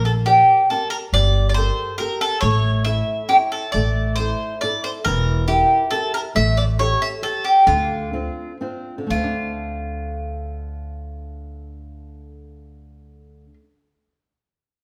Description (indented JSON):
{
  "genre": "italian folk, Italian serenade",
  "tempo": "119-140 BPM",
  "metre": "3/4",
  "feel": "rubato",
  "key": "D minor",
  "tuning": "A4 = 435 Hz",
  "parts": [
    { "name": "mandolin", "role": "melody", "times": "0.0-13.5 s", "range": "F4 to E5", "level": "-21 LUFS", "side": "equal", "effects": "none" },
    { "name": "flamenco guitar", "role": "accompaniment", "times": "0.0-13.6 s", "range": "D3 to D5", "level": "-30 LUFS", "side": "equal", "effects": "none" },
    { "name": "upright bass", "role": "bass", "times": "0.0-13.5 s", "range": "E1 to D2", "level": "-25 LUFS", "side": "equal", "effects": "none" }
  ],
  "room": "moderate large studio reverb, RT60 1.2 s",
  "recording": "band playing live in one room",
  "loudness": "-19 LUFS",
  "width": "mono",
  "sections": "0.0-9.1 A section; 9.1-12.1 B section",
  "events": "slowing down 6.4-9.1",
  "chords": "0.0 Bb6; 1.1 Gmadd9; 2.4 A; 3.7 Asus4; 5.1 Edim; 6.4 A7; 7.7 Dm7",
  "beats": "0.27 0.70 | 1.14 1.57 2.00 | 2.43 2.87 3.31 | 3.75 4.19 4.63 | 5.06 5.50 5.93 | 6.36 6.79 7.23 | 7.67 8.13 8.61 | 9.11 9.61 10.11 | 10.60 11.09 11.58"
}